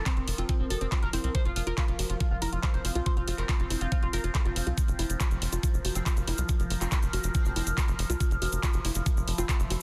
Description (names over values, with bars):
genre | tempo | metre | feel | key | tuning
psychedelic trance | 140 BPM | 4/4 | straight | unclear | A4 = 438 Hz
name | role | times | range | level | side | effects
overtone-sweeping drone | sustained chords | 0.0-9.8 s | F3 to Bb4 | -40 LUFS | equal | chorus, built-in reverb, phaser, sidechain pumping
overdriven synth lead | melody | 0.1-4.7 s | C4 to C5 | -40 LUFS | equal | distortion, phaser, cassette tape, sidechain pumping, digital delay
woody wave-folded pluck | riff | 0.1-9.8 s | E4 to C5 | -41 LUFS | equal | chorus, sidechain pumping, digital delay
electronic kick drum | drums | 0.1-9.6 s | none | -30 LUFS | equal | overdrive, studio reverb
techno drum kit | drums | 0.1-9.8 s | handclaps, hi-hat | -38 LUFS | equal | overdrive, studio reverb
tight sequencer bass | bass | 0.2-9.8 s | F1 to C2 | -33 LUFS | equal | none
cabasa | percussion | 4.8-9.7 s | none | -42 LUFS | equal | none
metallic wobble bass | second line | 6.0-9.6 s | C4 | -48 LUFS | equal | ensemble chorus, sidechain pumping, high-pass filter, digital delay
room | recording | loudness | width
light reverb | dense, heavily limited modern master | -28 LUFS | mono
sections
0.0-9.8 A section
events
none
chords
0.0 F5